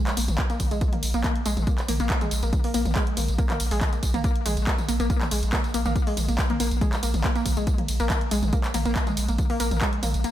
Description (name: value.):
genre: driving peak-time techno.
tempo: 140 BPM.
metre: 4/4.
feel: straight.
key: unclear.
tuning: A4 = 440 Hz.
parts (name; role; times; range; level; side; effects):
warbly dusty pluck; riff; 0.0-10.3 s; Ab3 to Bb3; -28 LUFS; equal; chorus, sidechain pumping, ping-pong delay.
punchy analog drum machine; drums; 0.1-10.3 s; handclaps, hi-hat, ride cymbal, tambourine, toms; -29 LUFS; left 1 dB; sidechain pumping on toms, sidechain pumping on hats, sidechain pumping on perc, sidechain pumping on cymbals.
saturated sub bass; bass; 0.2-10.2 s; Bb1; -27 LUFS; equal; overdrive, sidechain pumping, low-pass filter.
electronic kick drum; drums; 0.4-9.9 s; none; -25 LUFS; equal; none.
room: light reverb.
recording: none.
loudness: -22 LUFS.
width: side -12 dB against mid.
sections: 0.0-10.3 A section.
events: none.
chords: none.